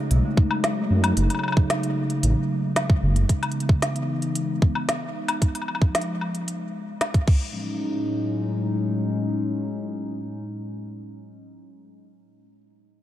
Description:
IDM; 113 BPM; 4/4; straight; F# dorian; A4 = 440 Hz
hollow soft pad; sustained chords; 0.0-11.9 s; A2 to D#4; -26 LUFS; equal; chorus
dark detuned saw bass; bass; 0.1-3.2 s; F#1 to F#2; -20 LUFS; equal
organic electronic drum kit; drums; 0.1-7.4 s; crash cymbal, hi-hat, snare drum, woodblock; -28 LUFS; left 1 dB
electronic kick drum; drums; 0.4-7.4 s; -18 LUFS; equal
moderate huge ambient reverb, RT60 5.7 s; dark, warm production; -21 LUFS; side -13 dB against mid
0.0-7.5 A section; 7.5-11.8 B section
0.0 F#m69; 3.3 C#m9; 5.4 C#9; 7.3 F#m69

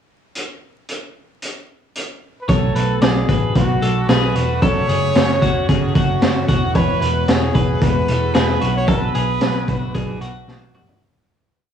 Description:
jangly indie pop; 112 BPM; 4/4; straight; B dorian; A4 = 441 Hz
raw garage drum kit; drums; 0.4-11.0 s; hi-hat, kick drum, snare drum, toms; -19 LUFS; equal; vintage 12-bit sampler grit, cassette tape
warm trumpet; melody; 2.4-10.5 s; F#4 to C#5; -23 LUFS; equal; analog delay
fingerpicked steel-string acoustic guitar; accompaniment; 2.5-11.0 s; F#2 to F#4; -24 LUFS; right 4 dB
shimmering ambient pad; sustained chords; 3.8-11.0 s; A3 to D6; -30 LUFS; equal; chorus, built-in reverb, phaser
twelve-string electric guitar; arpeggios; 2.5-11.0 s; F#4 to D5; -25 LUFS; left 4 dB; analog delay
vintage muted picked electric bass; bass; 2.5-11.0 s; E1 to B1; -21 LUFS; equal
light reverb; home recording on cassette, vinyl crackle, studio reverb; -15 LUFS; side -8 dB against mid
0.3-2.5 pickup bar; 2.5-11.0 chorus
fade-out 8.9-11.0; drum fill 10.5-11.0
0.3 N.C.; 2.5 Bm7; 4.6 F#m; 6.5 Eadd9; 8.6 Bm

